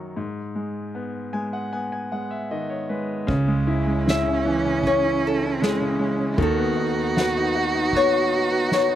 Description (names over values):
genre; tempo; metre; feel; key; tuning
acoustic folk-pop ballad; 77 BPM; 4/4; straight; unclear; A4 = 440 Hz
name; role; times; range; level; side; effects
bright concert grand piano; accompaniment; 0.0-9.0 s; F#2 to G#5; -24 LUFS; left 1 dB; none
warm cello; second line; 3.3-9.0 s; C#4 to F#4; -26 LUFS; right 4 dB; slapback echo
upright bass; bass; 3.3-9.0 s; C#2 to D#2; -28 LUFS; right 1 dB; none
soft-mallet drum kit; drums; 3.3-8.9 s; kick drum, ride cymbal, snare drum; -32 LUFS; equal; none
flamenco guitar; melody; 4.1-9.0 s; G#4 to E5; -24 LUFS; left 2 dB; slapback echo
room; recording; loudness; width
little or no reverb; recorded outdoors, with no room sound; -20 LUFS; side -11 dB against mid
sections
0.0-3.3 A section; 3.3-9.0 B section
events
none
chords
0.2 G#m; 3.3 C#m; 6.4 Badd9/D#